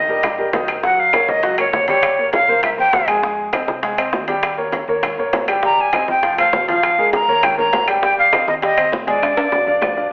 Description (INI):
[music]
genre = latin, salsa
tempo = 200 BPM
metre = 4/4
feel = straight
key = Eb major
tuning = A4 = 440 Hz
[part]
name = breathy bright jazz flute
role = melody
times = 0.0-3.1, 5.7-10.1 s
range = Db5 to Bb5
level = -15 LUFS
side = equal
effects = none
[part]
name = clear baby grand piano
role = accompaniment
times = 0.0-10.1 s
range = Eb3 to Ab5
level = -20 LUFS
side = equal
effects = none
[part]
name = hollow-body short-scale fingered electric bass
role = bass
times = 0.0-10.1 s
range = F1 to F2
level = -42 LUFS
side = equal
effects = none
[part]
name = bongos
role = percussion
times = 0.1-10.1 s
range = none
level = -26 LUFS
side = equal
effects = none
[part]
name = congas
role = percussion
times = 0.1-10.1 s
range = none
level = -28 LUFS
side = equal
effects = none
[part]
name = claves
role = percussion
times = 0.2-10.0 s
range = none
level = -27 LUFS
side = equal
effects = none
[part]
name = timbales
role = percussion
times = 0.2-9.9 s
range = none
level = -25 LUFS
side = equal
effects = none
[sound]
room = wet large studio reverb, RT60 1.3 s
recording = telephone sound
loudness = -14 LUFS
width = side -40 dB against mid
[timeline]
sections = 0.8-10.1 A section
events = drum fill 9.2-10.1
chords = 0.0 Eb; 0.8 Gbmaj7; 2.0 Gm7b5; 2.6 C7; 3.2 Fm7; 4.4 Eb7; 5.6 Abmaj7; 6.2 F; 6.8 Bbm7; 7.4 Eb7; 8.0 Abmaj7; 9.2 Bb7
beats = 0.23 0.53 | 0.83 1.13 1.43 1.73 | 2.03 2.33 2.63 2.93 | 3.23 3.53 3.83 4.13 | 4.43 4.73 5.03 5.33 | 5.63 5.93 6.23 6.53 | 6.83 7.13 7.43 7.73 | 8.03 8.33 8.63 8.93 | 9.22 9.52 9.82 10.12